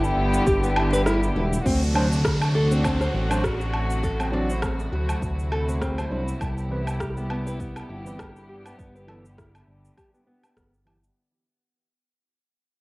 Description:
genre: organic downtempo.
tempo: 101 BPM.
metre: 4/4.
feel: swing 56% on 16ths.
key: D mixolydian.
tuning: A4 = 440 Hz.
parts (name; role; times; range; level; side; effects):
warm studio string section; sustained chords; 0.0-11.1 s; C3 to G4; -29 LUFS; equal; sidechain pumping, low-pass filter, cassette tape.
nylon-string guitar; arpeggios; 0.0-11.0 s; B3 to C5; -29 LUFS; equal; low-pass filter, cassette tape, tape echo.
smooth synth bass; bass; 0.0-11.1 s; E1 to D2; -25 LUFS; equal; none.
electronic cabasa, woodblock and rim click; drums; 0.0-11.1 s; none; -30 LUFS; equal; overdrive, cassette tape.
electronic kick drum; drums; 0.5-10.7 s; none; -30 LUFS; equal; overdrive, cassette tape.
downlifter; sound effects; 1.7-6.4 s; none; -37 LUFS; equal; none.
overdriven tine electric piano; accompaniment; 1.9-11.0 s; E3 to D5; -33 LUFS; right 1 dB; sidechain pumping, low-pass filter, cassette tape, tape echo.
room: light reverb.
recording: home recording on cassette.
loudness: -21 LUFS.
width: side -22 dB against mid.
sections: 0.0-1.7 A section; 1.7-11.2 B section.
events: break 1.1-1.7; fade-out 1.7-11.2.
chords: 0.0 G6; 1.7 D7; 6.4 Cmaj7; 8.8 G6.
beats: 0.47 1.06 | 1.66 2.25 2.84 3.44 | 4.03 4.63 5.22 5.81 | 6.41 7.00 7.60 8.19 | 8.78 9.38 9.97 10.57.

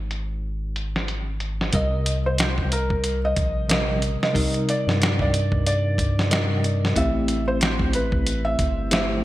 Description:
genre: trip hop.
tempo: 92 BPM.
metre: 4/4.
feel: swing 57% on 16ths.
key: C minor.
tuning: A4 = 440 Hz.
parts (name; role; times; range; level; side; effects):
bell-like tine electric piano; accompaniment; 0.0-9.2 s; C3 to Eb5; -26 LUFS; equal; tremolo.
round analog bass; bass; 0.0-9.2 s; G1 to G2; -25 LUFS; equal; none.
dusty soul sampler-style drum kit; drums; 0.1-9.1 s; hi-hat, kick drum, snare drum; -24 LUFS; equal; low-pass filter on hats, low-pass filter on snare, low-pass filter on kick, low-pass filter on room, gated reverb.
felt-muted upright piano; melody; 1.7-9.2 s; Bb4 to E5; -27 LUFS; right 1 dB; tape echo.
room: light reverb.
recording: bright 1980s-style digital production.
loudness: -20 LUFS.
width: side -15 dB against mid.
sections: 0.0-1.7 A section; 1.7-9.2 B section.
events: none.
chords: 0.0 Abmaj7; 1.7 Cm7; 7.0 Am7.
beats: 0.43 1.09 | 1.74 2.39 3.04 3.69 | 4.35 5.00 5.65 6.30 | 6.96 7.61 8.26 8.91.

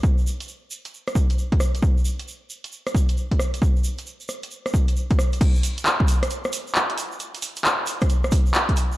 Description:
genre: UK garage.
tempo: 134 BPM.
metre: 4/4.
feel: swing 65% on 16ths.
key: none.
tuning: none.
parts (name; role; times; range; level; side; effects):
electronic kick drum; drums; 0.0-8.8 s; none; -19 LUFS; equal; none.
egg shaker; percussion; 0.0-9.0 s; none; -36 LUFS; right 3 dB; none.
punchy analog drum machine; drums; 0.4-8.9 s; crash cymbal, handclaps, hi-hat, rim click; -25 LUFS; equal; low-pass filter on hats, low-pass filter on snare, low-pass filter on cymbals, low-pass filter on room.
room: light reverb.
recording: dark, warm production.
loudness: -20 LUFS.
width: side -17 dB against mid.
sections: 0.0-5.4 A section; 5.4-9.0 B section.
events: drop 5.4-9.0.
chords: none.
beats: | 0.04 0.48 0.93 1.38 | 1.83 2.27 2.72 3.17 | 3.62 4.07 4.51 4.96 | 5.41 5.86 6.30 6.75 | 7.20 7.65 8.10 8.54.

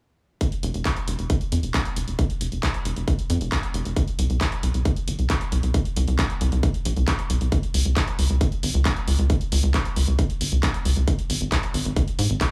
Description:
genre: uplifting trance.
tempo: 135 BPM.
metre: 4/4.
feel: straight.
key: unclear.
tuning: A4 = 440 Hz.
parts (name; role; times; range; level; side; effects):
electronic kick drum; drums; 0.4-12.5 s; none; -26 LUFS; equal; none.
punchy analog drum machine; drums; 0.4-12.5 s; handclaps, hi-hat; -31 LUFS; equal; none.
tight sequencer bass; bass; 0.6-12.4 s; F1 to Ab2; -24 LUFS; equal; sidechain pumping.
room: little or no reverb.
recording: none.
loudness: -23 LUFS.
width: mono.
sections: 0.4-12.5 A section.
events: none.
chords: none.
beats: | 0.41 0.85 1.30 1.74 | 2.19 2.63 3.08 3.52 | 3.96 4.41 4.85 5.30 | 5.74 6.19 6.63 7.08 | 7.52 7.96 8.41 8.85 | 9.30 9.74 10.19 10.63 | 11.08 11.52 11.96 12.41.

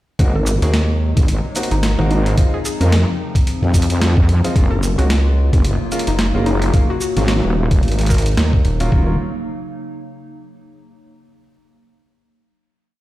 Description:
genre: glitch hop.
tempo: 110 BPM.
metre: 4/4.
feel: swing 58% on 16ths.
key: Eb dorian.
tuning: A4 = 438 Hz.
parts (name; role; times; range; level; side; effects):
warbly tape-like pad; sustained chords; 0.8-9.2 s; C3 to F4; -26 LUFS; left 1 dB; chorus, built-in reverb, sidechain pumping.
warm grand piano; stabs; 0.2-9.1 s; Gb3 to Ab4; -26 LUFS; equal; sidechain pumping, digital delay.
wobble bass; bass; 0.2-9.2 s; Eb1 to F2; -16 LUFS; equal; chorus, tube saturation.
boom bap sampler-style drum kit; drums; 0.2-8.9 s; hi-hat, shaker, snare drum; -24 LUFS; equal; none.
electronic kick drum; drums; 0.2-9.1 s; none; -15 LUFS; equal; none.
woody wave-folded pluck; melody; 0.4-8.5 s; Eb4 to Bb4; -26 LUFS; left 1 dB; chorus, digital delay.
rubbery square bass; bass; 0.6-8.9 s; Eb1 to Eb2; -16 LUFS; equal; tube saturation.
room: light reverb, digital ambience.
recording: played on a big sound system in a bare room, stone room reverb.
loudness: -14 LUFS.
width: side -16 dB against mid.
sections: 0.2-8.9 drop; 8.9-11.1 final chord.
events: drop 0.2-8.9.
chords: 0.2 Ab7; 2.4 Dbmaj9; 4.6 Gbmaj7; 6.7 Ebm7.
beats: | 0.19 0.74 1.28 1.83 | 2.37 2.92 3.46 4.01 | 4.55 5.10 5.65 6.19 | 6.74 7.28 7.83 8.37 | 8.92.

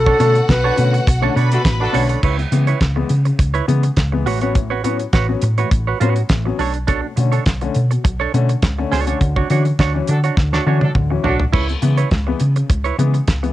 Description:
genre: disco.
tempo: 103 BPM.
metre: 4/4.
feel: straight.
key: unclear.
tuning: A4 = 440 Hz.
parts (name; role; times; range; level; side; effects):
bright alto flute; melody; 0.0-1.1 s; A4 to B4; -16 LUFS; left 1 dB; cassette tape.
rich studio violin section; second line; 0.0-2.2 s; F#4 to B5; -25 LUFS; left 1 dB; cassette tape.
warm grand piano; accompaniment; 0.0-13.5 s; A2 to C#4; -23 LUFS; left 7 dB; cassette tape.
hollow-body short-scale fingered electric bass; bass; 0.0-13.5 s; A1 to D3; -18 LUFS; equal; none.
semi-hollow electric guitar; accompaniment; 0.1-13.5 s; D4 to C#5; -22 LUFS; right 9 dB; cassette tape.
damped 70s drum kit; drums; 0.1-13.5 s; crash cymbal, hi-hat, kick drum, snare drum, toms; -18 LUFS; equal; cassette tape.
dark horn section; stabs; 1.5-2.0, 10.1-11.4 s; A3 to A4; -24 LUFS; right 1 dB; cassette tape.
room: small room reverb.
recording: home recording on cassette.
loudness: -14 LUFS.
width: side -14 dB against mid.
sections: 0.0-2.2 A section; 2.2-13.5 B section.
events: band accent 0.0-2.2, 9.2-11.5; drum fill 10.4-11.5.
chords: 0.0 Bm9; 2.2 C#m7; 4.3 A69; 6.6 Bm9; 9.2 Dmaj7; 11.5 C#m7.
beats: 0.49 1.07 1.65 | 2.23 2.81 3.39 3.97 | 4.55 5.14 5.72 6.30 | 6.88 7.47 8.05 8.63 | 9.21 9.79 10.38 10.96 | 11.54 12.12 12.70 13.28.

